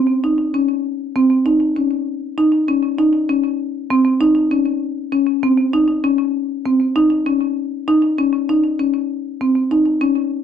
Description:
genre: progressive instrumental, progressive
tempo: 196 BPM (eighths)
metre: 9/8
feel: straight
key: unclear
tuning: A4 = 440 Hz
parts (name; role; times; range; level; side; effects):
- marimba with medium mallets; solo; 0.0-10.4 s; C4 to Eb4; -15 LUFS; equal; slapback echo
room: little or no reverb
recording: close, detailed microphones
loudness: -15 LUFS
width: side -8 dB against mid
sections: 0.0-10.4 A section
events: none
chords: none

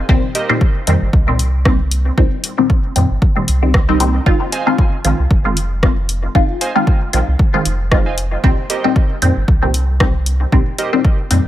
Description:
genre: dub techno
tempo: 115 BPM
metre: 4/4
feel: swing 55% on 16ths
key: unclear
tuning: A4 = 440 Hz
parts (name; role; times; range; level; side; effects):
- filtered dub chord stab; stabs; 0.1-11.4 s; Bb2 to F4; -18 LUFS; left 1 dB; phaser, sidechain pumping, dub echo
- soft dub sub bass; bass; 0.1-11.5 s; F1 to F2; -17 LUFS; equal; sidechain pumping
- electronic kick drum; drums; 0.1-11.2 s; none; -14 LUFS; equal; overdrive
- warbly lo-fi synth keys; riff; 0.3-0.5, 3.9-10.9 s; G4 to Ab5; -25 LUFS; right 3 dB; chorus, vintage 12-bit sampler grit, sidechain pumping, dub echo
- punchy analog drum machine; drums; 0.3-11.4 s; hi-hat, rim click; -21 LUFS; left 1 dB; overdrive
room: light reverb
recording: none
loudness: -12 LUFS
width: side -13 dB against mid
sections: 0.0-11.5 A section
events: filter sweep on synth stab 0.0-11.5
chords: 0.1 Cm7; 4.3 Fm7; 8.4 Cm7

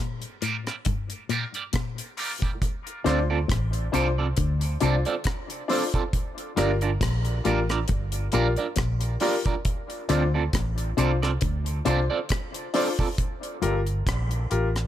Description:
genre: dub reggae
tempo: 68 BPM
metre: 4/4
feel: swing 56% on 16ths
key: D minor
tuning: A4 = 440 Hz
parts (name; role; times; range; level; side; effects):
- electric guitar with an envelope filter; riff; 0.0-13.9 s; G2 to D3; -32 LUFS; left 7 dB; dub echo
- deep reggae drum kit; drums; 0.2-14.9 s; hi-hat, kick drum, rim click; -28 LUFS; equal; none
- electric guitar at the edge of break-up; accompaniment; 0.4-13.1 s; Bb3 to D5; -29 LUFS; right 6 dB; phaser, high-pass filter, dub echo
- warm upright piano; stabs; 0.4-14.7 s; D4 to C5; -30 LUFS; left 5 dB; high-pass filter, dub echo
- vintage muted fingered electric bass; bass; 3.1-14.9 s; G1 to D2; -26 LUFS; equal; none
room: studio reverb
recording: none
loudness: -23 LUFS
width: side -12 dB against mid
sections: 0.0-14.9 A section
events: break 0.0-2.6; filter sweep 0.0-2.6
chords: 0.0 Gm7; 2.6 Dm7; 6.1 Gm7; 9.7 Dm7; 13.2 Gm7

